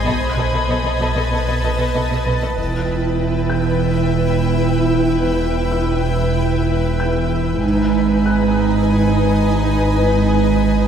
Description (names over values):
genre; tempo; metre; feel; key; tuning
cinematic; 95 BPM; 4/4; straight; unclear; A4 = 442 Hz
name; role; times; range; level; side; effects
rich studio violin section; melody; 0.0-10.9 s; G5 to B5; -29 LUFS; left 3 dB; none
dark studio violin section; second line; 0.0-10.9 s; A4 to D#5; -26 LUFS; left 4 dB; none
shimmering ambient pad; sustained chords; 0.0-10.9 s; B4 to A5; -24 LUFS; equal; chorus, built-in reverb
warm studio cello section; bass; 0.0-10.9 s; E2 to B2; -21 LUFS; right 3 dB; none
punchy sub bass; drone; 0.0-10.9 s; E1 to B1; -23 LUFS; equal; none
felt-muted upright piano; texture; 0.0-10.9 s; E6 to G6; -34 LUFS; left 1 dB; none
warm studio violin section; texture; 0.0-10.9 s; B5 to G#6; -32 LUFS; left 2 dB; none
clear studio double bass section; bass; 0.1-10.9 s; E1 to B1; -22 LUFS; right 4 dB; none
warm symphonic viola section; accompaniment; 2.6-10.9 s; D#4 to E4; -23 LUFS; equal; none
room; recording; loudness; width
wet scoring stage reverb, RT60 1.7 s; heard from further back in the room; -15 LUFS; side -8 dB against mid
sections
0.0-2.6 A section; 2.6-10.9 B section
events
none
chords
0.0 B7; 2.6 Em; 7.6 G#m